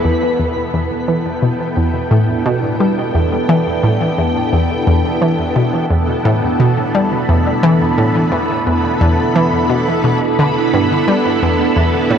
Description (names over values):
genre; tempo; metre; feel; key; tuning
ambient, sequencer-driven space music; 87 BPM; 4/4; straight; E minor; A4 = 439 Hz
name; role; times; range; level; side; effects
string machine, full ensemble; sustained chords; 0.0-12.2 s; B3 to B5; -16 LUFS; right 1 dB; phaser, ensemble chorus
analog pluck; riff; 0.0-12.2 s; E2 to G3; -15 LUFS; equal; chorus, analog delay
room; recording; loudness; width
wet huge ambient reverb, RT60 7.8 s; worn, warbling old tape, cassette tape, warbly pitch drift, faint mains hum; -13 LUFS; side -8 dB against mid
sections
0.0-12.2 A section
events
none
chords
0.0 Em